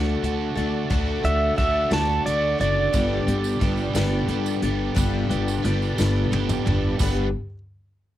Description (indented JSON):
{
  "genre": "folk rock and heartland rock",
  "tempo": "59 BPM (dotted quarters)",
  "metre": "6/8",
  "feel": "straight",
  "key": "G major",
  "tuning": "A4 = 440 Hz",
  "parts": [
    { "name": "pedal steel guitar", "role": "melody", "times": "0.0-4.5 s", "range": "D5 to A5", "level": "-25 LUFS", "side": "right 1 dB", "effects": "cassette tape" },
    { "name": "picked twelve-string acoustic guitar", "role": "accompaniment", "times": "0.0-7.3 s", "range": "G2 to A4", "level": "-29 LUFS", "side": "left 9 dB", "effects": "cassette tape" },
    { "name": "tonewheel organ", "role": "sustained chords", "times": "0.0-7.3 s", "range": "G3 to A5", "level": "-37 LUFS", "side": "left 1 dB", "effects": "slow rotary speaker, chorus vibrato, cassette tape" },
    { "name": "overdriven electric guitar", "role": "riff", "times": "0.0-7.3 s", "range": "G2 to B4", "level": "-29 LUFS", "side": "right 8 dB", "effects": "cassette tape" },
    { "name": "upright bass", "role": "bass", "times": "0.0-7.3 s", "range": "F#1 to D2", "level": "-24 LUFS", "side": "equal", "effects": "none" },
    { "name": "soft brush drum kit", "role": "drums", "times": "0.2-7.2 s", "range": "crash cymbal, hi-hat, kick drum, snare drum, toms", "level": "-27 LUFS", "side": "equal", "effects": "cassette tape" },
    { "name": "tambourine", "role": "percussion", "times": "2.9-7.3 s", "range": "none", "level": "-39 LUFS", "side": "right 11 dB", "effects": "none" }
  ],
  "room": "light reverb",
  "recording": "home recording on cassette",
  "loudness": "-20 LUFS",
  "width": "side -13 dB against mid",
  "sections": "0.0-7.0 A section; 7.0-8.2 B section",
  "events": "pedal steel guitar solo 0.0-7.0; drum fill 6.0-7.0",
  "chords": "0.0 D; 2.9 Gadd9"
}